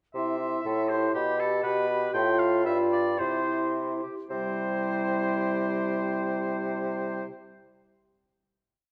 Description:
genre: quick classical-period movement for wind quintet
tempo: 106-122 BPM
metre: 2/4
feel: straight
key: C major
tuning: A4 = 439 Hz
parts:
  - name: mellow hollow silver concert flute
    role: melody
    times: 0.1-7.2 s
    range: G5 to C6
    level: -37 LUFS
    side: equal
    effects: none
  - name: clear oboe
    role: second line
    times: 0.1-7.2 s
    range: G4 to G5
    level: -36 LUFS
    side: equal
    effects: none
  - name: warm bassoon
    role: bass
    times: 0.1-7.2 s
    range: G2 to C3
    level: -32 LUFS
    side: equal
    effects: none
  - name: warm French horn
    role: accompaniment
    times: 0.2-7.2 s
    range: G3 to G4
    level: -34 LUFS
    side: equal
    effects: none
  - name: clear clarinet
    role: accompaniment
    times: 0.6-7.2 s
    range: E4 to A4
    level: -36 LUFS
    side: equal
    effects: none
room: wet recital hall reverb, RT60 1.5 s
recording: dark, warm production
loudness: -28 LUFS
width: mono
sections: 0.2-4.3 theme; 4.3-6.5 final chord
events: slowing down 1.6-4.3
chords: 0.2 C; 0.7 Am; 1.2 G/B; 2.1 F/A; 2.7 G7; 3.2 C

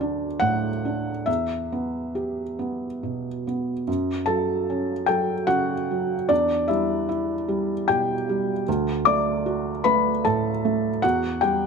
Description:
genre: neoclassical minimalist piano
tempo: 68-78 BPM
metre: 3/4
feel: rubato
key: E dorian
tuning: A4 = 440 Hz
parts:
  - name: felt-muted upright piano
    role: solo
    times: 0.0-11.7 s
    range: D2 to D6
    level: -22 LUFS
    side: equal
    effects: none
room: light reverb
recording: none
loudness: -22 LUFS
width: side -5 dB against mid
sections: 0.0-3.9 A section; 3.9-11.7 B section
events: none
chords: 0.0 D; 1.3 Em; 3.9 F#m; 6.3 Em; 8.7 D; 11.0 Em

